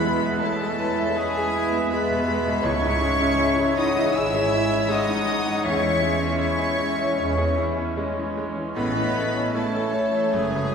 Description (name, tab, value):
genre	classical, romantic movement for piano and orchestra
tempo	71-82 BPM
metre	4/4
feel	rubato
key	C# minor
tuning	A4 = 441 Hz
part	bright concert grand piano	melody	0.0-10.7 s	C#2 to E5	-26 LUFS	left 2 dB	none
part	warm symphonic violin section	melody	0.0-10.7 s	G#5 to E6	-29 LUFS	left 1 dB	none
part	bright oboe	second line	0.0-10.7 s	C#5 to E5	-33 LUFS	equal	none
part	mellow concert flute	second line	0.0-10.7 s	B4 to G#5	-32 LUFS	left 1 dB	none
part	warm clarinet	second line	0.0-10.7 s	G#4 to E5	-33 LUFS	left 1 dB	none
part	warm symphonic violin section	second line	0.0-10.7 s	G#4 to E5	-32 LUFS	left 3 dB	none
part	dark symphonic viola section	accompaniment	0.0-10.7 s	C#3 to G#4	-30 LUFS	right 3 dB	none
part	mellow bassoon	accompaniment	0.0-10.7 s	G#3 to A3	-33 LUFS	right 2 dB	none
part	dark studio double bass section	bass	0.0-10.7 s	F#1 to E2	-31 LUFS	right 2 dB	none
part	warm studio cello section	bass	0.0-10.7 s	G#3 to E4	-29 LUFS	left 1 dB	none
part	dark French horn section	sustained chords	1.2-10.7 s	G#3 to E4	-37 LUFS	left 2 dB	none
part	timpani	percussion	2.6-3.7 s	C#3	-38 LUFS	equal	none
room	wet concert hall reverb, RT60 1.7 s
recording	recorded in a church or concert hall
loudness	-20 LUFS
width	side -6 dB against mid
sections	0.0-10.7 A section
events	none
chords	0.0 E; 2.7 C#m; 5.7 C#m/E; 8.8 A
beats	0.42 1.17 1.92 | 2.65 3.40 4.16 4.91 | 5.66 6.41 7.19 7.98 | 8.78 9.55 10.34